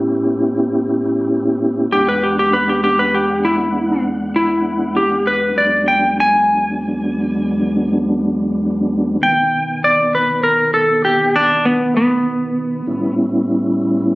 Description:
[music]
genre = blues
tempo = 66 BPM (dotted quarters)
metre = 12/8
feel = straight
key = E mixolydian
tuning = A4 = 441 Hz
[part]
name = mellow tonewheel organ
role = sustained chords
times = 0.0-14.2 s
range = E2 to F#5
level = -18 LUFS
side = equal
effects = slow rotary speaker, chorus vibrato
[part]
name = clean lap steel guitar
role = melody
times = 1.9-13.1 s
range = B3 to G#5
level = -14 LUFS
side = equal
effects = none
[sound]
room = moderate club reverb, RT60 0.9 s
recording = recorded on a phone in the room, studio reverb, compression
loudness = -14 LUFS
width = side -21 dB against mid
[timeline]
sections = 0.0-14.2 A section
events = none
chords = 0.0 A9; 1.9 E9; 9.2 B; 12.9 A9

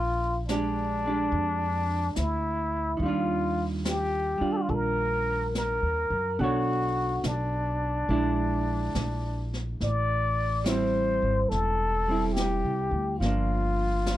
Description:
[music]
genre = jazz ballad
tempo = 71 BPM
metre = 4/4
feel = swing 66% on 8ths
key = unclear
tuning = A4 = 440 Hz
[part]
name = trumpet with plunger mute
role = melody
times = 0.0-14.2 s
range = D4 to D5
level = -28 LUFS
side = left 2 dB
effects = none
[part]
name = upright bass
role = bass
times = 0.0-14.2 s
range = E1 to Gb2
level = -30 LUFS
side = equal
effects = none
[part]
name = vintage hollow-body jazz guitar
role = accompaniment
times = 0.5-14.2 s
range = Eb3 to C#5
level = -31 LUFS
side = right 3 dB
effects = none
[part]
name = jazz brush drum kit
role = drums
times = 0.5-14.2 s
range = brushed snare drum, hi-hat, snare drum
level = -36 LUFS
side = equal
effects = none
[sound]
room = small room ambience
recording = none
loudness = -25 LUFS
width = side -14 dB against mid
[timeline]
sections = 0.0-14.2 A section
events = none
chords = 0.0 Bb6; 3.0 Ebmaj9; 6.4 Bm9; 8.1 Bb7#11; 9.8 Am7; 13.2 Gm7

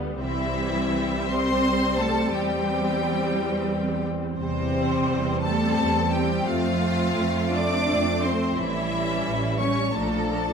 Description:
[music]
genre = classical, slow romantic movement for symphony orchestra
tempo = 86 BPM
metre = 3/4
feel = uneven beats, rubato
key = C major, F major from 4.4 s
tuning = A4 = 443 Hz
[part]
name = warm studio viola section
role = accompaniment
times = 0.0-10.5 s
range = F3 to D4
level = -29 LUFS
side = right 1 dB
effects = none
[part]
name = warm French horn section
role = sustained chords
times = 0.0-10.5 s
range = F3 to D4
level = -31 LUFS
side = left 2 dB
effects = none
[part]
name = clear studio double bass section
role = bass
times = 0.0-10.5 s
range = A1 to F2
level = -28 LUFS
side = right 4 dB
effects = none
[part]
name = clear studio violin section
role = melody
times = 0.2-10.5 s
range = C5 to D6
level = -29 LUFS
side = left 3 dB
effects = none
[part]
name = rich studio violin section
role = second line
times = 0.2-10.5 s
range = C4 to D5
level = -30 LUFS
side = left 1 dB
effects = none
[part]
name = rich studio cello section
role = bass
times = 0.2-10.5 s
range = C3 to D4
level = -29 LUFS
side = equal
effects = none
[sound]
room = moderate scoring stage reverb, RT60 1.6 s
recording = none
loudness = -22 LUFS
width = side -6 dB against mid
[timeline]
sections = 0.0-10.5 A section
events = none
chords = 0.2 C; 2.3 C/E; 6.5 F; 8.6 A7; 9.9 Bb

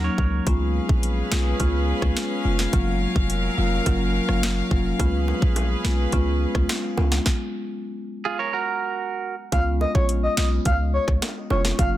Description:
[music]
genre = dancehall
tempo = 106 BPM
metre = 4/4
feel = straight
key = unclear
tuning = A4 = 440 Hz
[part]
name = marimba with medium mallets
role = accompaniment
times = 0.0-12.0 s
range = Gb3 to F4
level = -27 LUFS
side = left 1 dB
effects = none
[part]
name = clean electric guitar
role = arpeggios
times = 0.0-0.4, 8.3-9.3 s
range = F4 to Db5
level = -26 LUFS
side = right 7 dB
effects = spring reverb
[part]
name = hard-hitting 808-style bass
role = bass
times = 0.0-12.0 s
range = F1 to Db2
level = -23 LUFS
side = equal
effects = none
[part]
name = island pop drum kit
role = drums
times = 0.2-11.9 s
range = hi-hat, kick drum, rim click, snare drum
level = -23 LUFS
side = equal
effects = none
[part]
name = clear studio string section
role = sustained chords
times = 0.5-7.2 s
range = Gb3 to F5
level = -29 LUFS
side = left 1 dB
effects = sidechain pumping
[part]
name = bongos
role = percussion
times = 5.3-11.8 s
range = none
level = -34 LUFS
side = right 3 dB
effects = none
[part]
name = breathy flute-like synth lead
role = melody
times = 9.5-11.9 s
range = Db5 to F5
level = -25 LUFS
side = equal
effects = chorus
[sound]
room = small room ambience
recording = dense, heavily limited modern master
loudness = -20 LUFS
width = side -14 dB against mid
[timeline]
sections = 0.5-9.5 A section; 9.5-12.0 B section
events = stop 7.3-9.5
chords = 0.5 Db7; 2.7 Gbmaj7; 5.0 Db7; 7.3 N.C.; 9.5 Db7

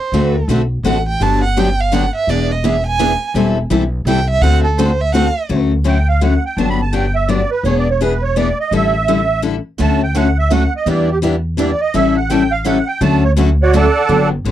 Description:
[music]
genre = acoustic string swing (jazz manouche)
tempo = 168 BPM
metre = 3/4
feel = swing 62% on 8ths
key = D major from 5.5 s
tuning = A4 = 436 Hz
[part]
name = warm violin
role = second line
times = 0.0-5.4 s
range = A4 to A5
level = -18 LUFS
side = right 4 dB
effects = none
[part]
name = picked steel-string acoustic guitar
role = accompaniment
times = 0.1-14.5 s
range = D3 to A4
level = -18 LUFS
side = left 6 dB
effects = none
[part]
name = picked steel-string acoustic guitar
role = accompaniment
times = 0.1-5.3, 9.8-13.9 s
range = D3 to B4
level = -20 LUFS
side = right 6 dB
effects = none
[part]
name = upright bass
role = bass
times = 0.1-14.5 s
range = E1 to E2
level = -17 LUFS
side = equal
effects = none
[part]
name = musette accordion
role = melody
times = 5.9-14.3 s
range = F#4 to B5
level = -17 LUFS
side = right 5 dB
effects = none
[sound]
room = little or no reverb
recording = dry, close 1970s-style studio recording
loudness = -13 LUFS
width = side -12 dB against mid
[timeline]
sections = 0.0-5.5 A section; 5.5-14.1 A section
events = violin solo 0.0-5.5; accordion solo 5.5-14.5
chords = 0.1 D7; 1.2 Gmaj7; 2.3 E7; 3.4 Am7/E; 4.4 D7; 5.5 Dmaj7; 6.6 Gmaj7; 7.7 E7; 8.7 A7sus4; 9.8 Dmaj7; 10.9 Em7; 11.9 A7; 13.0 Dmaj7

